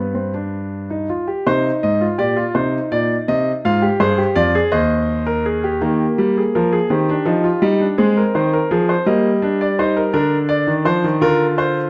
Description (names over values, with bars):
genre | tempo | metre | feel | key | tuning
classical, baroque-style 3-part fugue for grand piano | 55 BPM (dotted quarters) | 6/8 | straight | C minor, Eb major from 5.8 s | A4 = 440 Hz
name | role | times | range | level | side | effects
warm concert grand piano | solo | 0.0-11.9 s | Eb2 to F5 | -18 LUFS | equal | none
room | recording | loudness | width
moderate stone room reverb, RT60 1.3 s | close, detailed microphones | -18 LUFS | mono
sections
0.0-1.5 A section; 1.5-5.8 B section; 5.8-11.9 C section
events
none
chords
0.0 G; 1.5 Cm; 3.6 Fm; 4.7 Cm/Eb; 5.8 Eb; 8.0 Ab; 9.1 Eb/G; 10.2 Bb/D